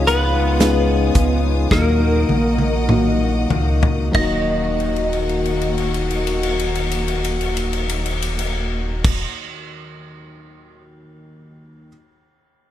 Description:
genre	pop ballad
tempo	46-57 BPM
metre	4/4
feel	straight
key	Eb minor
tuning	A4 = 439 Hz
part	direct-recorded clean electric guitar	melody	0.0-9.3 s	Bb3 to Eb5	-21 LUFS	equal	ensemble chorus
part	warm French horn section	second line	0.0-9.3 s	Eb4 to Gb4	-27 LUFS	left 4 dB	none
part	dark upright piano	accompaniment	0.0-11.9 s	Eb2 to Ab4	-26 LUFS	left 1 dB	none
part	rich symphonic string section	sustained chords	0.0-9.3 s	Bb3 to Eb6	-30 LUFS	left 1 dB	none
part	fingerpicked steel-string acoustic guitar	arpeggios	0.0-9.3 s	Db3 to Gb4	-28 LUFS	left 6 dB	digital delay
part	sub bass with octave	bass	0.0-9.3 s	Eb1 to Eb2	-22 LUFS	equal	none
part	natural country drum kit	drums	0.1-10.8 s	crash cymbal, hi-hat, kick drum, ride cymbal, snare drum, toms	-22 LUFS	equal	none
room	light reverb, small room ambience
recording	none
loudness	-16 LUFS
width	side -12 dB against mid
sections	0.0-4.1 A section; 4.1-9.4 B section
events	slowing down 0.0-4.1; drum fill 1.7-4.1, 4.8-9.0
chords	0.0 Dbadd9; 1.7 Ebm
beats	0.60 1.71 2.89 | 4.15 5.45 6.76 8.06

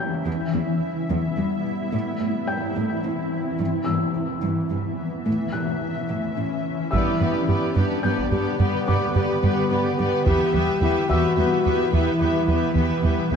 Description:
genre	cinematic, hybrid orchestral and electronic film score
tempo	72 BPM (dotted quarters)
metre	6/8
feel	straight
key	E minor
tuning	A4 = 440 Hz
part	granular cloud pad	sustained chords	0.0-13.4 s	D3 to E5	-26 LUFS	left 1 dB	built-in reverb
part	felt-muted upright piano	texture	0.0-13.4 s	D5 to G6	-33 LUFS	left 2 dB	ping-pong delay
part	harp-like synth pluck	arpeggios	0.3-13.4 s	E3 to G4	-29 LUFS	left 4 dB	chorus, ping-pong delay
part	rich symphonic cello section	bass	0.3-13.4 s	E2 to A2	-29 LUFS	right 4 dB	none
part	warm symphonic violin section	second line	6.9-13.4 s	B4 to E5	-29 LUFS	left 3 dB	none
part	warm symphonic viola section	accompaniment	6.9-13.4 s	B3 to G4	-28 LUFS	right 3 dB	none
part	mellow French horn section	sustained chords	6.9-12.7 s	B3 to G4	-25 LUFS	left 2 dB	none
part	plucky analog bass	riff	6.9-13.4 s	E2 to G2	-24 LUFS	right 3 dB	none
part	taiko ensemble	drums	6.9-11.3 s	none	-28 LUFS	equal	none
room	moderate scoring stage reverb, RT60 1.7 s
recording	dark, warm production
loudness	-20 LUFS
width	side -6 dB against mid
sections	0.0-6.9 A section; 6.9-13.4 B section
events	build-up 0.0-6.9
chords	0.3 Em; 1.9 Am; 3.6 Em; 5.3 A; 6.9 G; 10.3 Em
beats	| 0.26 1.10 | 1.93 2.76 | 3.60 4.43 | 5.26 6.10 | 6.93 7.76 | 8.60 9.43 | 10.26 11.10 | 11.93 12.76

